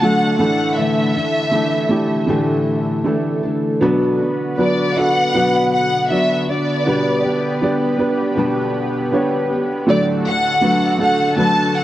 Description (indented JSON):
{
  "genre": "pop",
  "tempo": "79 BPM",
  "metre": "4/4",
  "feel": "straight",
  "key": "unclear",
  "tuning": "A4 = 437 Hz",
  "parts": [
    { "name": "warm studio violin section", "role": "melody", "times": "0.0-11.8 s", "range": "D5 to A5", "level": "-19 LUFS", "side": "equal", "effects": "none" },
    { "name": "warm upright piano", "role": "accompaniment", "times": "0.0-11.8 s", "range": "D2 to D5", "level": "-19 LUFS", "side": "right 2 dB", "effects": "none" },
    { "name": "lush unison pad", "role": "sustained chords", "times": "0.0-11.8 s", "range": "D3 to B4", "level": "-24 LUFS", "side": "right 1 dB", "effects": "chorus" },
    { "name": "nylon-string guitar", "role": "arpeggios", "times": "0.0-11.8 s", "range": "A2 to A4", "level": "-22 LUFS", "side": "left 4 dB", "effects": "none" }
  ],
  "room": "moderate plate reverb, RT60 2.9 s",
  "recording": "worn, warbling old tape, cassette tape, warbly pitch drift",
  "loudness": "-15 LUFS",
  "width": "side -14 dB against mid",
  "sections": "0.0-11.8 A section",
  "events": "none",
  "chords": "0.4 Asus4; 3.8 Bm; 6.9 G/B; 9.9 D"
}